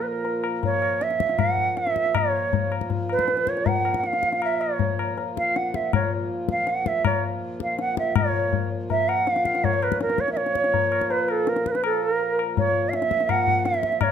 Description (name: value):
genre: indian classical, Hindustani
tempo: 161 BPM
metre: 4/4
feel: straight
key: Bb raga todi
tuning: A4 = 440 Hz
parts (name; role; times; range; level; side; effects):
- bansuri; melody; 0.0-14.1 s; A4-23c to Gb5+25c; -23 LUFS; right 3 dB; none
- pedal harmonium; drone; 0.0-14.1 s; Bb2 to F3; -31 LUFS; equal; none
- tabla; percussion; 0.2-14.1 s; none; -26 LUFS; left 9 dB; none
- breathy mellow shakuhachi; second line; 2.2-14.1 s; A4 to A5; -33 LUFS; left 4 dB; none
room: light reverb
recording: close, detailed microphones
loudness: -21 LUFS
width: side -8 dB against mid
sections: 0.0-8.2 A section; 8.2-14.1 B section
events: speeding up 0.0-14.1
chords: none